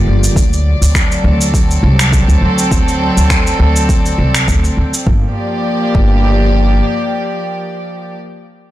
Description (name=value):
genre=organic downtempo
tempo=102 BPM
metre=4/4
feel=swing 55% on 16ths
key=unclear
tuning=A4 = 441 Hz
part: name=warm chamber string section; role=sustained chords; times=0.0-8.2 s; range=F3 to D5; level=-17 LUFS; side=equal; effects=sidechain pumping
part: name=upright bass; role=bass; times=0.0-6.8 s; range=G1 to D2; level=-13 LUFS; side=equal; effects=transformer saturation, sidechain pumping
part: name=electronic cabasa and finger snaps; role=drums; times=0.2-5.0 s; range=none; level=-18 LUFS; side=equal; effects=soft clipping on snare
part: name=electronic kick drum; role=drums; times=0.4-6.1 s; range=none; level=-14 LUFS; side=equal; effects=none
room=light reverb, digital ambience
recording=blown-out, overdriven recording, overdrive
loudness=-10 LUFS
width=side -14 dB against mid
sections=0.0-5.1 A section; 5.1-7.4 B section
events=none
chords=0.4 D7; 5.1 Gm7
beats=| 0.36 0.95 1.54 2.12 | 2.71 3.30 3.89 4.48 | 5.07 5.65 6.24 6.83